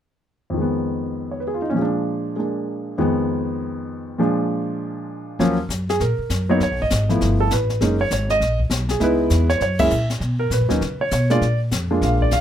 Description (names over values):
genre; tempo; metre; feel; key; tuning
jazz piano trio; 199 BPM; 4/4; swing 62% on 8ths; Eb minor; A4 = 440 Hz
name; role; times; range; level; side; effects
warm concert grand piano; melody; 0.5-12.4 s; F2 to F5; -20 LUFS; equal; none
upright bass; bass; 5.4-12.4 s; Gb1 to Db3; -21 LUFS; equal; none
jazz brush drum kit; drums; 5.4-12.4 s; brushed snare drum, hi-hat, kick drum, ride cymbal, snare drum; -28 LUFS; left 3 dB; none
room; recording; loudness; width
light reverb; close, detailed microphones; -18 LUFS; side -10 dB against mid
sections
0.6-5.4 A section; 5.4-12.4 B section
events
band accent 9.8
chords
0.6 Fm7b5; 1.8 Bb7; 3.0 Fm7b5; 4.2 Bb7; 5.4 Ebm7; 6.6 Abm; 7.2 G13; 7.8 Gb69; 9.0 Dbm7; 9.6 Gb7; 10.2 Bmaj7(no3); 11.4 Bb7